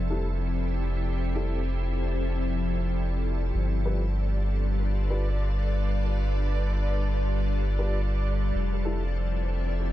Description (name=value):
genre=ambient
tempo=96 BPM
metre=4/4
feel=swing 59% on 16ths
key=G mixolydian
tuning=A4 = 440 Hz
part: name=soft additive organ-like pad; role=sustained chords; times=0.0-9.9 s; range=F3 to B4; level=-32 LUFS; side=left 2 dB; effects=ensemble chorus, built-in reverb
part: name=soft dub sub bass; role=bass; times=0.0-9.9 s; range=F1 to G1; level=-26 LUFS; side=equal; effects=none
part: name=backwards swelling texture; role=texture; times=0.0-9.9 s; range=D5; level=-40 LUFS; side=right 1 dB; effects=built-in reverb
part: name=dark upright piano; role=stabs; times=0.1-9.0 s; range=G3 to B4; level=-39 LUFS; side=left 2 dB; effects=low-pass filter, dub echo
room=little or no reverb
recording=none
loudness=-25 LUFS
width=side -14 dB against mid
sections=0.0-9.9 A section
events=none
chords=0.0 Fmaj9; 3.5 G7; 8.5 Fmaj7